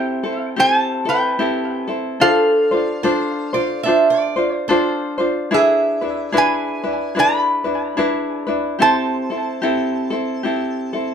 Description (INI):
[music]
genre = Hawaiian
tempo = 73 BPM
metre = 4/4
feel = swing 60% on 8ths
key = A minor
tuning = A4 = 440 Hz
[part]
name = metal-body resonator slide guitar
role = melody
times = 0.0-11.1 s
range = G#4 to B5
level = -18 LUFS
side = equal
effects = analog delay
[part]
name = tenor ukulele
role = accompaniment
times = 0.0-11.1 s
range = C4 to C5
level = -19 LUFS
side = left 1 dB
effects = none
[part]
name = picked old ladder-braced acoustic guitar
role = second line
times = 3.0-5.3 s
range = C5 to E5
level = -20 LUFS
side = right 5 dB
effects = none
[sound]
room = wet studio reverb, RT60 0.6 s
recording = dark, warm production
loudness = -16 LUFS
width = side -7 dB against mid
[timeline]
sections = 0.0-11.1 A section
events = none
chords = 0.0 Am7; 2.2 Dm7; 5.5 E7; 8.8 Am7